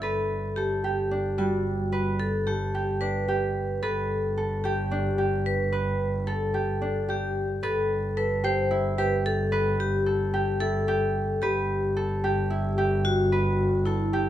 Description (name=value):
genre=contemporary instrumental, chamber music in an uneven meter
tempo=221 BPM (eighths)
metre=7/8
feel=straight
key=G major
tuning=A4 = 438 Hz
part: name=vibraphone with medium hard mallets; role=second line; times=0.0-14.3 s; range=E4 to C5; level=-28 LUFS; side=left 2 dB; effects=none
part: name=Celtic harp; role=arpeggios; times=0.0-14.3 s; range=G3 to B4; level=-29 LUFS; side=right 2 dB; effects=none
part: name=dark double bass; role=bass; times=0.0-14.3 s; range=G1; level=-28 LUFS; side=right 1 dB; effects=none
room=light reverb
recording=close, detailed microphones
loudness=-24 LUFS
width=side -12 dB against mid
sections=0.0-14.3 A section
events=none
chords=0.0 G; 7.6 C6/G (rootless)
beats=| 0.02 0.29 0.57 0.84 1.11 1.38 1.65 | 1.93 2.20 2.47 2.74 3.01 3.28 3.56 | 3.83 4.10 4.37 4.64 4.91 5.18 5.46 | 5.73 6.00 6.27 6.54 6.81 7.08 7.36 | 7.63 7.90 8.17 8.44 8.71 8.98 9.26 | 9.53 9.80 10.07 10.34 10.61 10.88 11.15 | 11.42 11.70 11.97 12.24 12.51 12.78 13.05 | 13.32 13.59 13.86 14.13